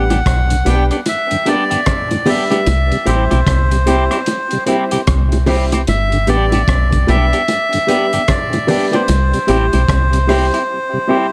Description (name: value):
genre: roots reggae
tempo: 75 BPM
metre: 4/4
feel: swing 62% on 16ths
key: G major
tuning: A4 = 440 Hz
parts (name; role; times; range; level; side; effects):
- melodica; melody; 0.0-11.3 s; C5 to G5; -21 LUFS; equal; tape echo
- semi-hollow electric guitar; accompaniment; 0.0-11.3 s; B3 to G4; -25 LUFS; equal; harmonic tremolo, tape echo
- warm upright piano; stabs; 0.0-11.3 s; G3 to G4; -22 LUFS; equal; none
- deep dub fingered electric bass; bass; 0.0-10.5 s; G1 to C2; -17 LUFS; equal; none
- mellow tonewheel organ; accompaniment; 0.1-11.2 s; G2 to G4; -26 LUFS; equal; chorus vibrato, slow rotary speaker, tape echo
- crunchy breakbeat drum kit; drums; 0.1-10.7 s; hi-hat, kick drum, rim click; -24 LUFS; equal; none
- bongos; percussion; 0.1-10.5 s; none; -23 LUFS; equal; none
room: light reverb, small room ambience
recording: none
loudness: -15 LUFS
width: mono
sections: 0.0-11.3 A section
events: break 10.7-11.3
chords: 0.0 G; 2.7 C; 5.9 G; 9.1 C